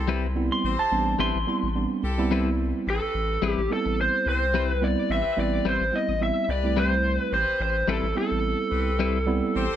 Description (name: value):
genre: blues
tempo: 108 BPM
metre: 4/4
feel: swing 55% on 16ths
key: A minor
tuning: A4 = 440 Hz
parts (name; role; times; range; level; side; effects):
- clean lap steel guitar; second line; 0.0-1.7 s; A5 to C6; -28 LUFS; equal; tape echo
- clear horn section; sustained chords; 0.0-9.8 s; C4 to C5; -37 LUFS; left 2 dB; none
- saturated sub bass; bass; 0.0-9.8 s; A1 to C2; -28 LUFS; left 1 dB; none
- clean electric guitar; stabs; 0.1-9.2 s; G3 to B4; -31 LUFS; left 7 dB; spring reverb
- tine electric piano; accompaniment; 0.4-9.6 s; G3 to E4; -28 LUFS; right 5 dB; none
- lead guitar through a small cranked amp; melody; 2.9-9.8 s; A4 to E5; -25 LUFS; equal; overdrive
room: light reverb, digital ambience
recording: none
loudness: -22 LUFS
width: side -10 dB against mid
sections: 0.0-2.9 A section; 2.9-9.8 B section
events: electric slide guitar solo 0.0-2.9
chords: 0.0 Am9